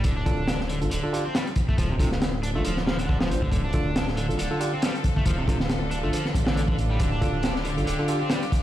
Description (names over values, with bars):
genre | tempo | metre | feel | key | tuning
breakbeat, breaks | 138 BPM | 4/4 | swing 56% on 16ths | D minor | A4 = 439 Hz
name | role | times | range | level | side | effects
crunchy overdriven guitar | riff | 0.0-8.4 s | C3 to D4 | -31 LUFS | left 1 dB | tube saturation, vintage 12-bit sampler grit, dub echo
detuned saw bass | bass | 0.0-8.0 s | D1 to A1 | -27 LUFS | equal | none
crunchy breakbeat drum kit | drums | 0.0-8.6 s | hi-hat, kick drum, snare drum | -26 LUFS | equal | none
bright tine electric piano | stabs | 0.3-8.2 s | D4 to C5 | -32 LUFS | right 2 dB | vintage 12-bit sampler grit, low-pass filter, dub echo
bright chamber string section | sustained chords | 3.5-8.6 s | D3 to A4 | -30 LUFS | left 1 dB | vintage 12-bit sampler grit, sidechain pumping
room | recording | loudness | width
light reverb | played on a big sound system in a bare room, large studio reverb | -22 LUFS | side -13 dB against mid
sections
0.0-8.6 A section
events
none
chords
0.0 Dm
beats
| 0.04 0.48 0.91 1.35 | 1.78 2.22 2.65 3.09 | 3.52 3.96 4.39 4.83 | 5.26 5.69 6.13 6.56 | 7.00 7.43 7.87 8.30